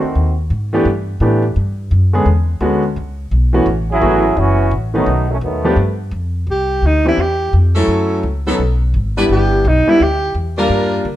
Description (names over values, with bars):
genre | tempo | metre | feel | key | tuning
jazz, big band swing | 170 BPM | 4/4 | swing 64% on 8ths | E major | A4 = 440 Hz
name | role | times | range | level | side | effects
mellow trombone section | second line | 0.0-0.4, 3.9-6.0 s | D#3 to G#4 | -17 LUFS | right 1 dB | none
upright bass | bass | 0.0-11.2 s | F#1 to D3 | -16 LUFS | equal | none
clear concert grand piano | accompaniment | 0.7-11.0 s | D3 to Bb4 | -16 LUFS | equal | none
breathy alto saxophone | melody | 6.5-10.4 s | Eb4 to G4 | -16 LUFS | equal | plate reverb
warm saxophone section | sustained chords | 7.8-11.0 s | F#3 to B4 | -23 LUFS | right 1 dB | none
room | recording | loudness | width
light reverb | none | -13 LUFS | side -13 dB against mid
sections
0.0-6.5 A section; 6.5-11.2 B section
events
trombone section solo 0.0-6.5; alto saxophone solo 6.5-11.2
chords
0.0 D7b9; 0.9 G69; 2.3 E13; 3.7 A69; 5.1 B7; 5.8 Fsus2; 6.5 C; 7.9 F#m7; 8.6 E7#9; 9.3 Em7